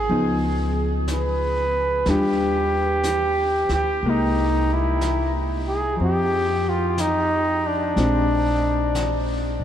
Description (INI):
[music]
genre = jazz ballad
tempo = 61 BPM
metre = 4/4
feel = swing 66% on 8ths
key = Eb major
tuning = A4 = 442 Hz
[part]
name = clear flugelhorn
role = melody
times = 0.0-9.6 s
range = D4 to Cb5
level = -22 LUFS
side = equal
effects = none
[part]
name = hollow-body jazz guitar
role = accompaniment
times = 0.0-9.6 s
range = F3 to F4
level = -26 LUFS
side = left 2 dB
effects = none
[part]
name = upright bass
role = bass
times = 0.0-9.6 s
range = Bb1 to Bb2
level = -25 LUFS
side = equal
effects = none
[part]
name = vintage brush drum kit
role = drums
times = 0.1-9.6 s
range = brushed snare drum, hi-hat, snare drum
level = -35 LUFS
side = equal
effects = none
[sound]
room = wet huge ambient reverb, RT60 8.4 s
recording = in a vast, echoing space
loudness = -19 LUFS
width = side -10 dB against mid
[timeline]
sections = 0.0-9.6 A section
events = none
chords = 0.1 Db9; 2.1 Ebmaj9; 4.0 C7alt; 6.0 F5; 8.0 Bb9